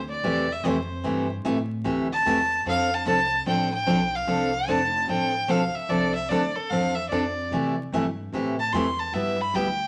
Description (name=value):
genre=country, western swing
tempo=148 BPM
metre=4/4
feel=swing 64% on 8ths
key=C major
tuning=A4 = 442 Hz
part: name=clear fiddle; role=melody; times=0.0-9.9 s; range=A4 to C6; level=-28 LUFS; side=equal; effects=none
part: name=upright bass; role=bass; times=0.0-9.9 s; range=F1 to C3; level=-37 LUFS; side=equal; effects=none
part: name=picked steel-string acoustic guitar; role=accompaniment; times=0.2-9.7 s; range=C3 to A4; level=-28 LUFS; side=equal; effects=none
room=wet studio reverb, RT60 0.8 s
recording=vinyl crackle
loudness=-25 LUFS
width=mono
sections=0.0-9.9 A section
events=none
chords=0.0 C6; 2.7 F6; 7.5 C6; 9.1 G6